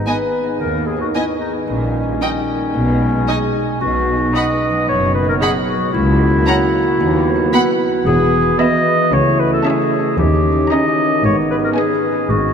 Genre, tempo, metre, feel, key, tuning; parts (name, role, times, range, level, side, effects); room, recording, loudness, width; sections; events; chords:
cinematic, playful, whimsical film cue; 113 BPM; 4/4; straight; G# minor; A4 = 440 Hz
warm clarinet; second line; 0.0-12.5 s; C#4 to D#5; -18 LUFS; left 1 dB
mellow French horn section; sustained chords; 0.0-12.5 s; G3 to F#4; -21 LUFS; right 2 dB
concert harp; arpeggios; 0.0-12.5 s; G#2 to E5; -23 LUFS; equal
rich chamber violin section; melody; 0.1-12.2 s; G5 to B5; -28 LUFS; equal
rich chamber violin section; second line; 0.1-12.2 s; D#5 to F#5; -29 LUFS; right 2 dB
rich chamber viola section; accompaniment; 0.1-12.2 s; B3 to D#4; -26 LUFS; right 2 dB
rich chamber double bass section; bass; 0.6-12.5 s; E1 to D#2; -22 LUFS; equal
rich symphonic cello section; bass; 0.6-12.5 s; C#2 to B2; -22 LUFS; equal
wet cathedral reverb, RT60 6.0 s; in a vast, echoing space; -14 LUFS; side -7 dB against mid
0.0-12.5 A section
0.0 G#m; 1.7 D#7/A#; 2.8 G#m/B; 3.8 B; 5.9 F#7/C#; 7.0 B/D#; 8.1 E; 9.1 A/C#; 10.2 D#7; 11.2 G#m